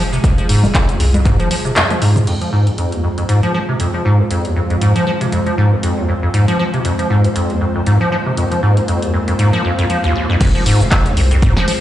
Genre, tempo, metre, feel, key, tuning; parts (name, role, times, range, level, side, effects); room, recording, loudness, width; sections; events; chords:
acid house; 118 BPM; 4/4; swing 56% on 16ths; F minor pentatonic; A4 = 440 Hz
string machine, full ensemble; sustained chords; 0.0-11.8 s; Ab3 to C5; -23 LUFS; equal; ensemble chorus, sidechain pumping
acid bass, square; riff; 0.0-11.7 s; Eb2 to F3; -15 LUFS; equal; tube saturation, wide subtle chorus, dub echo
saturated sub bass; bass; 0.0-1.5, 10.4-11.6 s; F1 to C2; -18 LUFS; equal; sidechain pumping
punchy analog drum machine; drums; 0.1-11.8 s; congas, crash cymbal, handclaps, hi-hat, shaker, snare drum, toms; -20 LUFS; equal
electronic kick drum; drums; 0.2-1.4, 10.4-11.5 s; -14 LUFS; equal
deep dark ambient pad; texture; 4.4-11.8 s; F3 to C5; -26 LUFS; equal; chorus, built-in reverb, sidechain pumping
swell; sound effects; 9.6-10.4 s; -23 LUFS; equal
moderate studio reverb, RT60 0.6 s; played on a big sound system in a bare room, stone room reverb, nothing above 10.7 kHz; -12 LUFS; side -13 dB against mid
0.0-2.3 A section; 2.3-10.4 B section; 10.4-11.8 C section
drum fill 1.8-2.3; band accent 1.8; filter sweep on acid bass 2.3-10.4; filter sweep on string machine 2.3-10.4; swell 9.6-10.4; drop 10.4-11.8
0.0 Fm